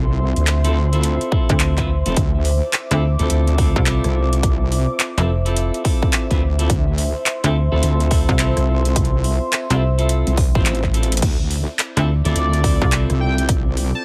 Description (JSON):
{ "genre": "glitch hop", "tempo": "106 BPM", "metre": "4/4", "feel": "swing 63% on 16ths", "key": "D minor", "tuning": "A4 = 438 Hz", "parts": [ { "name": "dark analog pad", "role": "sustained chords", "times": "0.0-14.0 s", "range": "C5 to D6", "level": "-30 LUFS", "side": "equal", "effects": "chorus, phaser, sidechain pumping" }, { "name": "clean electric guitar", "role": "stabs", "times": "0.0-14.0 s", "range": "C4 to C5", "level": "-28 LUFS", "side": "equal", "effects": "vintage 12-bit sampler grit, sidechain pumping, dub echo" }, { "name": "wobble bass", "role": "bass", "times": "0.0-13.9 s", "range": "F1 to D2", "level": "-20 LUFS", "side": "equal", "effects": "chorus, overdrive" }, { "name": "dubstep drum kit", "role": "drums", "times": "0.4-13.9 s", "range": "crash cymbal, handclaps, hi-hat, rim click", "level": "-26 LUFS", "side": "equal", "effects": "none" }, { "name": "electronic kick drum", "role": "drums", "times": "1.3-13.6 s", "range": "none", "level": "-21 LUFS", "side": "equal", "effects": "none" }, { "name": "slap-like FM bass", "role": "bass", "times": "1.5-13.1 s", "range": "F1 to D2", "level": "-20 LUFS", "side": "equal", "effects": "none" }, { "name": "sync lead", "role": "melody", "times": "12.3-14.0 s", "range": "D5 to A5", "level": "-28 LUFS", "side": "equal", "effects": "subtle chorus, cassette tape, dub echo" } ], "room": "little or no reverb", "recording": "none", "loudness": "-18 LUFS", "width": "mono", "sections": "0.0-14.0 A section", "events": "drum fill 10.9", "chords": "0.0 Dm9" }